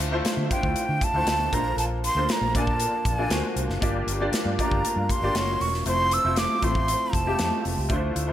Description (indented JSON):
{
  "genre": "polished 1980s jazz-funk pop",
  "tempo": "118 BPM",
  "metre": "4/4",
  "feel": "straight",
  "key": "unclear",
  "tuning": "A4 = 440 Hz",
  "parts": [
    { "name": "warm baby grand piano", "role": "accompaniment", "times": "0.0-8.3 s", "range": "G#3 to D5", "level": "-28 LUFS", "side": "left 1 dB", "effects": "ensemble chorus" },
    { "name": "vintage muted fingered electric bass", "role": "bass", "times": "0.0-8.3 s", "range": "E1 to D3", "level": "-29 LUFS", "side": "equal", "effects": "none" },
    { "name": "modern studio drum kit", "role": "drums", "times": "0.0-8.3 s", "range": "hi-hat, kick drum, snare drum", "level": "-28 LUFS", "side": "equal", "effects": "gated reverb" },
    { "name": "breathy jazz flute", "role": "melody", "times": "0.5-7.6 s", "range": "G5 to E6", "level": "-26 LUFS", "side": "right 1 dB", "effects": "none" }
  ],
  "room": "light reverb, studio ambience",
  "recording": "none",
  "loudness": "-22 LUFS",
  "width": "side -12 dB against mid",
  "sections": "0.0-8.3 A section",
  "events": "none",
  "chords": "0.0 Dm9; 1.5 Bbmaj9; 3.3 D7alt; 3.8 Gm7; 5.3 F#maj7; 5.9 Fmaj7",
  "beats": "0.25 0.76 1.27 | 1.78 2.29 2.80 3.31 | 3.82 4.33 4.84 5.35 | 5.86 6.37 6.88 7.39 | 7.90"
}